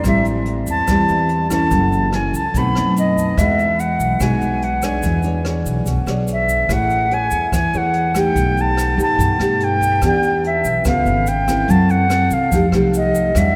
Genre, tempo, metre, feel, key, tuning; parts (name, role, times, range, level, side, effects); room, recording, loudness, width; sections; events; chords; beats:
bossa nova; 144 BPM; 4/4; straight; E minor; A4 = 443 Hz
reedy silver concert flute; melody; 0.0-13.6 s; D#5 to B5; -21 LUFS; equal
nylon-string guitar; accompaniment; 0.0-13.6 s; A2 to C#5; -22 LUFS; equal
upright bass; bass; 0.0-13.6 s; F#1 to C3; -24 LUFS; equal
jazz brush drum kit; drums; 0.0-13.4 s; hi-hat, kick drum, rim click; -28 LUFS; equal
tube shaker; percussion; 0.0-13.6 s; -37 LUFS; equal
wet cathedral reverb, RT60 5.2 s; in a vast, echoing space; -17 LUFS; mono
0.0-13.6 A section
0.0 Am7; 1.7 F#m7; 2.5 B7b9; 3.4 Emaj9; 5.0 E6; 6.7 Amaj7; 8.4 Baug7; 10.0 Em7; 10.9 C#7b13; 11.7 F#m7b5; 12.5 F9
| 0.05 0.46 0.88 1.29 | 1.71 2.13 2.54 2.96 | 3.37 3.79 4.20 4.62 | 5.04 5.45 5.87 6.28 | 6.70 7.12 7.53 7.95 | 8.36 8.78 9.20 9.61 | 10.03 10.44 10.86 11.28 | 11.69 12.11 12.52 12.94 | 13.36